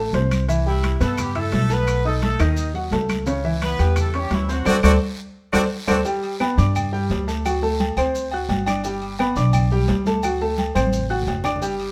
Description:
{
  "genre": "latin, salsa",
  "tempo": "172 BPM",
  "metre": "4/4",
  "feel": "straight",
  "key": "G major",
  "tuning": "A4 = 440 Hz",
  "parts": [
    { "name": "warm concert grand piano", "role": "accompaniment", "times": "0.0-11.9 s", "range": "C#3 to F#6", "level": "-26 LUFS", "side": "equal", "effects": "none" },
    { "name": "upright bass", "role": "bass", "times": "0.0-11.9 s", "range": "G1 to G2", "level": "-25 LUFS", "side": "equal", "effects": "none" },
    { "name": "congas", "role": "percussion", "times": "0.1-11.9 s", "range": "none", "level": "-28 LUFS", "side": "equal", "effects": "none" },
    { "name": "guiro", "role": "percussion", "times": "0.1-11.9 s", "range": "none", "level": "-41 LUFS", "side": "equal", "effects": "none" },
    { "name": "maracas", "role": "percussion", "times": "0.1-11.9 s", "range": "none", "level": "-42 LUFS", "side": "equal", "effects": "none" },
    { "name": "timbales and agogo bells", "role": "percussion", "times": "0.1-11.9 s", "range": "none", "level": "-31 LUFS", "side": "equal", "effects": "none" },
    { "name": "claves", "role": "percussion", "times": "0.3-11.6 s", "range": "none", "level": "-35 LUFS", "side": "equal", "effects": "none" },
    { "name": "brilliant horn section", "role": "melody", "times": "0.7-6.0 s", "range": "E3 to D#5", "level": "-29 LUFS", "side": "equal", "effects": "none" }
  ],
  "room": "moderate studio reverb, RT60 0.9 s",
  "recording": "none",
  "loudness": "-21 LUFS",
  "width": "mono",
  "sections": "0.0-6.1 A section; 6.1-11.9 B section",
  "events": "drum fill 4.7-6.1, 10.8-11.6; band accent 4.7-6.1",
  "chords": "0.5 Cmaj7; 1.9 B7; 3.3 A7/C#; 4.7 D7; 6.1 Gadd9; 7.5 D7; 8.8 Gadd9; 10.2 D7"
}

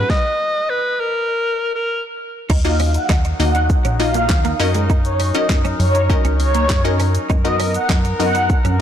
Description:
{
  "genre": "dance-pop",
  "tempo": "100 BPM",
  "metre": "4/4",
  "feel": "straight",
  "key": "Eb minor",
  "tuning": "A4 = 438 Hz",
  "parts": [
    { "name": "bright alto saxophone", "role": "melody", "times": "0.0-2.0 s", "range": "Bb4 to Eb5", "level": "-19 LUFS", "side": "equal", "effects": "digital delay" },
    { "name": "wavetable chord stab", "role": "accompaniment", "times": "0.0-8.6 s", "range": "Bb3 to Eb5", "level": "-23 LUFS", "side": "left 3 dB", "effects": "sidechain pumping" },
    { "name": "warm brass ensemble", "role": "sustained chords", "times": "0.0-8.8 s", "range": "Eb3 to Bb4", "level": "-28 LUFS", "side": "left 2 dB", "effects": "sidechain pumping" },
    { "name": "twelve-string electric guitar", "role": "riff", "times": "0.0-8.7 s", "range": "Ab3 to Eb4", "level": "-27 LUFS", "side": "right 7 dB", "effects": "ensemble chorus" },
    { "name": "plucky analog bass", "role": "bass", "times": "0.0-8.8 s", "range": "Bb1 to Gb2", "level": "-19 LUFS", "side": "equal", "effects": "sidechain pumping" },
    { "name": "pop drum kit", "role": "drums", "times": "0.1-8.8 s", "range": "crash cymbal, handclaps, hi-hat, kick drum, shaker, snare drum", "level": "-19 LUFS", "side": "equal", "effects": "none" },
    { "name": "filtered supersaw swell", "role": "melody", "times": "2.6-8.4 s", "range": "Db5 to Gb5", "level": "-22 LUFS", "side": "equal", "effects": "sidechain pumping, digital delay" }
  ],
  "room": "little or no reverb",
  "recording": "blown-out, overdriven recording, overdrive",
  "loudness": "-15 LUFS",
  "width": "side -10 dB against mid",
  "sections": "0.0-2.5 A section; 2.5-8.8 B section",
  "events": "build-up 0.0-2.5; stop 0.1-2.5; drop 2.5-8.8",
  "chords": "0.0 Abm7; 1.3 N.C.; 2.5 Ebmadd9; 4.6 Gb6; 7.3 Bmaj7/F#"
}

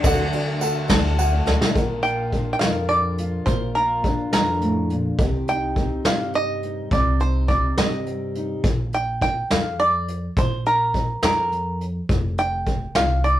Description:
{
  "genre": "indie folk with a building arrangement",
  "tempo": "70 BPM (dotted quarters)",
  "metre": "6/8",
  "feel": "straight",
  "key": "Bb major",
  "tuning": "A4 = 441 Hz",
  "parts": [
    { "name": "bluegrass banjo", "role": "melody", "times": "0.0-13.4 s", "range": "Bb4 to G5", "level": "-22 LUFS", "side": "right 1 dB", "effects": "none" },
    { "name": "warm cello", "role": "second line", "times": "0.0-1.4 s", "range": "D4", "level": "-36 LUFS", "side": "left 4 dB", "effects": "none" },
    { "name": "felt-muted upright piano", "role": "accompaniment", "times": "0.0-1.8 s", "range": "D2 to F#5", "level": "-28 LUFS", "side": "equal", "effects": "none" },
    { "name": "picked twelve-string acoustic guitar", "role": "accompaniment", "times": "0.0-1.8 s", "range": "D3 to F#4", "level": "-29 LUFS", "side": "left 4 dB", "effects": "none" },
    { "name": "dark upright piano", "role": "arpeggios", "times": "0.0-1.8 s", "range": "A4 to A5", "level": "-28 LUFS", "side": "right 1 dB", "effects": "digital delay" },
    { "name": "upright bass", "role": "bass", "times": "0.0-13.4 s", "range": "F1 to G2", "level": "-25 LUFS", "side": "equal", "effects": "none" },
    { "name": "vintage brush drum kit", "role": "drums", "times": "0.0-13.4 s", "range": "hi-hat, kick drum, ride cymbal, snare drum", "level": "-22 LUFS", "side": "equal", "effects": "none" },
    { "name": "tambourine", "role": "percussion", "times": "0.0-1.3 s", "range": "none", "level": "-36 LUFS", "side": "right 5 dB", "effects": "none" },
    { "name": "fingerpicked steel-string acoustic guitar", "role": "accompaniment", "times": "1.8-8.6 s", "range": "G2 to Bb4", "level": "-27 LUFS", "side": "left 1 dB", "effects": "none" }
  ],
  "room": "light reverb",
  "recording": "rough rehearsal-room recording",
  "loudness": "-19 LUFS",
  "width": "side -13 dB against mid",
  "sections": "0.0-1.8 A section; 1.8-13.4 B section",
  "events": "felt piano fill 0.9-1.8; drum fill 1.5",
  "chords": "0.0 D; 1.8 Bb; 5.2 Cm; 8.6 Bb5; 12.1 F5"
}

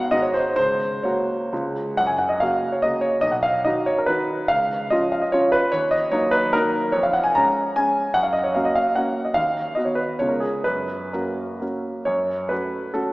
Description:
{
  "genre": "classical, romantic triple-time dance for piano with dotted rhythms",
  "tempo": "118-160 BPM",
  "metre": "3/4",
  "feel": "rubato",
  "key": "F# major",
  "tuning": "A4 = 440 Hz",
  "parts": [
    { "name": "warm concert grand piano", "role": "solo", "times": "0.0-13.1 s", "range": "B1 to A#5", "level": "-19 LUFS", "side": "equal", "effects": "none" }
  ],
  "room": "wet concert hall reverb, RT60 2.3 s",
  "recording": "heard from further back in the room, small speaker sound",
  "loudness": "-19 LUFS",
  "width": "side -20 dB against mid",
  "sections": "0.0-2.0 A section; 2.0-12.1 B section; 12.1-13.1 C section",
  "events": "none",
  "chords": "0.1 G#7; 0.6 F#/C#; 1.5 C#; 2.0 F#; 3.2 B; 4.5 C#; 5.7 D#m; 6.9 C#/E#; 8.1 F#; 9.4 B/D#; 10.2 C#7; 10.6 F#; 12.1 F#m"
}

